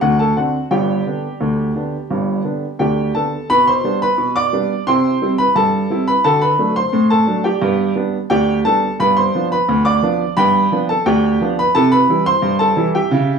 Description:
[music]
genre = ragtime piano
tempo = 87 BPM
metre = 2/4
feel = straight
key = G major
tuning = A4 = 441 Hz
[part]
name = clear upright piano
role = solo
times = 0.0-13.4 s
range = G1 to D6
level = -14 LUFS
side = right 1 dB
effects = none
[sound]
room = wet club reverb, RT60 0.8 s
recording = heard from further back in the room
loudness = -14 LUFS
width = side -6 dB against mid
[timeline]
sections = 0.0-3.5 A section; 3.5-13.4 B section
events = none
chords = 0.0 D7; 0.7 G; 3.5 G/B; 4.9 C; 6.2 D7; 7.6 G; 9.0 G7; 11.7 C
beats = 0.01 | 0.70 1.40 | 2.10 2.79 | 3.49 4.18 | 4.87 5.55 | 6.24 6.93 | 7.62 8.31 | 8.99 9.68 | 10.37 11.06 | 11.74 12.43 | 13.11

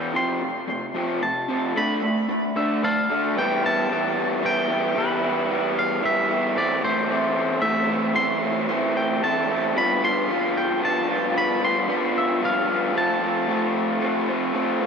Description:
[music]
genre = rock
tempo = 113 BPM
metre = 3/4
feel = straight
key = unclear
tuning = A4 = 439 Hz
[part]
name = twangy electric guitar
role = melody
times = 0.0-14.9 s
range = B4 to C6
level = -25 LUFS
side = equal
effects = spring reverb, tape echo
[part]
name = raw garage guitar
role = riff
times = 0.0-14.9 s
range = E2 to F4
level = -22 LUFS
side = equal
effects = overdrive, spring reverb
[sound]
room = wet lush hall reverb, RT60 2.8 s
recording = dreamy mix soaked in reverb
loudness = -20 LUFS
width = side -6 dB against mid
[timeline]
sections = 0.0-3.4 A section; 3.4-14.9 B section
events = build-up 0.0-3.4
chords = 0.2 F; 1.8 Dm; 3.4 Em; 6.6 Am; 9.7 G7; 12.9 F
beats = | 0.16 0.69 1.22 | 1.76 2.29 2.82 | 3.36 3.89 4.42 | 4.96 5.49 6.02 | 6.55 7.08 7.62 | 8.15 8.68 9.21 | 9.75 10.28 10.81 | 11.35 11.88 12.41 | 12.94 13.47 14.01 | 14.54

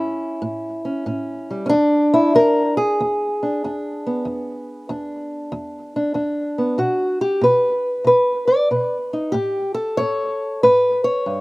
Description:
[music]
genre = acoustic country blues, solo or duo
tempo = 94 BPM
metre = 4/4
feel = swing 66% on 8ths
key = E mixolydian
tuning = A4 = 440 Hz
[part]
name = fingerpicked old ladder-braced acoustic guitar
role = solo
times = 0.0-11.4 s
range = E2 to D5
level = -17 LUFS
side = equal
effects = none
[sound]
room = little or no reverb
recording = recorded outdoors, with no room sound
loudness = -17 LUFS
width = side -22 dB against mid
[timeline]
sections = 0.0-11.4 A section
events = none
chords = 0.0 A; 1.7 E7; 6.8 B5; 9.3 A7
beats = 0.43 1.07 | 1.70 2.34 2.98 3.61 | 4.25 4.88 5.52 6.16 | 6.80 7.44 8.07 8.71 | 9.35 9.99 10.63 11.27

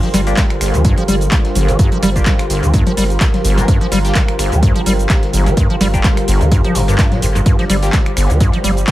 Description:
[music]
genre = acid house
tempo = 127 BPM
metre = 4/4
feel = swing 55% on 16ths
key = G minor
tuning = A4 = 440 Hz
[part]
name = warm analog pad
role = sustained chords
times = 0.0-8.9 s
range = D3 to D5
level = -22 LUFS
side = right 1 dB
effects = chorus, sidechain pumping
[part]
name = acid bass, square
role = riff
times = 0.0-8.7 s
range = G1 to G3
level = -18 LUFS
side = equal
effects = tube saturation, analog chorus, sidechain pumping, analog delay
[part]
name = booming analog drum machine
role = drums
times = 0.0-8.9 s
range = cabasa, congas, finger snaps, handclaps, hi-hat, snare drum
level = -21 LUFS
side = left 1 dB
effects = analog delay
[part]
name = breakbeat sampler-style drum kit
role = drums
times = 0.0-8.9 s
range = hi-hat, snare drum, tambourine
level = -32 LUFS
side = right 1 dB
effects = none
[part]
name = granular cloud pad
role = texture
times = 0.0-8.9 s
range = G4 to C6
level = -25 LUFS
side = right 1 dB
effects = built-in reverb, sidechain pumping
[part]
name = saturated sub bass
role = bass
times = 0.1-8.8 s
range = G1 to D2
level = -17 LUFS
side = equal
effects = sidechain pumping
[part]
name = band-passed chord stab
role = stabs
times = 0.3-7.9 s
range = Bb3 to Bb4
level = -28 LUFS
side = left 3 dB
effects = none
[part]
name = electronic kick drum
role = drums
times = 0.4-8.9 s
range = none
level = -14 LUFS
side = equal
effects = none
[sound]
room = light reverb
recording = echo-heavy mix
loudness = -11 LUFS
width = side -15 dB against mid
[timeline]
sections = 0.0-8.9 A section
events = none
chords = 0.0 Gm7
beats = 0.37 0.85 1.32 | 1.79 2.26 2.74 3.21 | 3.68 4.15 4.63 5.10 | 5.57 6.04 6.52 6.99 | 7.46 7.93 8.40 8.88

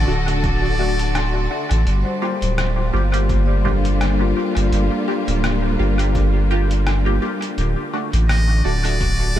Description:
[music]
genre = ambient dub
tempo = 84 BPM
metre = 4/4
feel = swing 56% on 16ths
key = G minor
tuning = A4 = 440 Hz
[part]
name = trumpet with metal mute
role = melody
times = 0.0-1.5, 8.3-9.4 s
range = D5 to Eb5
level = -28 LUFS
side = equal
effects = dub echo
[part]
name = rich studio string section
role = sustained chords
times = 0.0-9.4 s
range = D3 to A5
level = -25 LUFS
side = left 1 dB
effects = none
[part]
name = vibraphone with medium mallets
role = arpeggios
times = 0.0-7.6 s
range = Bb3 to C6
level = -28 LUFS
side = left 1 dB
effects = analog delay
[part]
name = soft dub sub bass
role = bass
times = 0.0-9.4 s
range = D1 to A1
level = -18 LUFS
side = equal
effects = none
[part]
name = filtered dub chord stab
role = stabs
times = 0.1-9.4 s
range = A3 to G4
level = -26 LUFS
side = equal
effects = phaser, wide subtle chorus, dub echo
[part]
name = lo-fi sampler-style drum kit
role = drums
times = 0.3-9.4 s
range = congas, hi-hat, rim click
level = -29 LUFS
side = equal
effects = overdrive, dub echo
[part]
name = electronic kick drum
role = drums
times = 0.4-9.2 s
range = none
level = -25 LUFS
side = equal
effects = none
[sound]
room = light reverb, digital ambience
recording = none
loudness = -16 LUFS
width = side -12 dB against mid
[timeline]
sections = 0.0-9.4 A section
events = none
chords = 0.0 D; 1.9 Gm7; 7.6 D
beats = 0.44 1.15 | 1.86 2.58 3.29 4.01 | 4.72 5.44 6.15 6.87 | 7.58 8.29 9.01

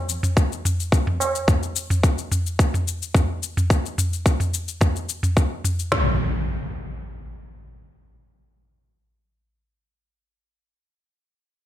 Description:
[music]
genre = organic downtempo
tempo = 108 BPM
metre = 4/4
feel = straight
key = none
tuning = none
[part]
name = electronic cabasa and toms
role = drums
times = 0.1-5.9 s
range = none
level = -23 LUFS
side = equal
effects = studio reverb
[part]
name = tabla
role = percussion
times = 0.1-1.3 s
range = none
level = -28 LUFS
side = right 4 dB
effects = none
[part]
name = organic electronic drum kit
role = drums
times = 0.4-6.1 s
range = kick drum, snare drum, toms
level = -19 LUFS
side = equal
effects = overdrive, studio reverb
[part]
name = impact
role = sound effects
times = 5.9-9.6 s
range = none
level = -25 LUFS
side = equal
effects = none
[sound]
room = little or no reverb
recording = none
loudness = -20 LUFS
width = side -12 dB against mid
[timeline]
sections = 0.0-5.9 A section; 5.9-8.1 B section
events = none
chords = none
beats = 0.36 0.92 | 1.48 2.03 2.59 3.14 | 3.70 4.25 4.81 5.36 | 5.92 6.48 7.03 7.59

